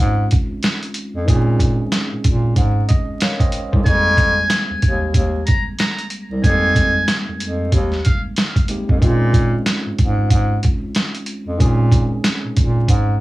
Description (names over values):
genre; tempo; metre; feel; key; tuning
hip hop, boom-bap hip-hop; 93 BPM; 4/4; swing 60% on 16ths; unclear; A4 = 441 Hz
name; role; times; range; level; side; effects
tine electric piano; accompaniment; 0.0-13.2 s; Eb3 to G5; -24 LUFS; right 1 dB; overdrive, fast stereo tremolo, high-pass filter, low-pass filter
mellow bass clarinet; bass; 0.0-13.2 s; C2 to Bb2; -18 LUFS; equal; tube saturation
trip hop sampler-style drum kit; drums; 0.3-13.1 s; hi-hat, kick drum, snare drum; -17 LUFS; equal; none
trumpet with metal mute; melody; 3.9-8.2 s; F5 to Bb5; -20 LUFS; equal; high-pass filter, low-pass filter, analog delay
room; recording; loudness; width
little or no reverb; dry, gritty hardware recording, vinyl crackle, small room ambience; -15 LUFS; side -18 dB against mid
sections
0.0-13.2 A section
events
none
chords
0.0 Bbm11; 3.9 Fm11; 9.0 Bbm11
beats
0.63 | 1.27 1.92 2.57 3.21 | 3.86 4.50 5.15 5.79 | 6.44 7.08 7.73 8.37 | 9.02 9.66 10.31 10.95 | 11.60 12.24 12.89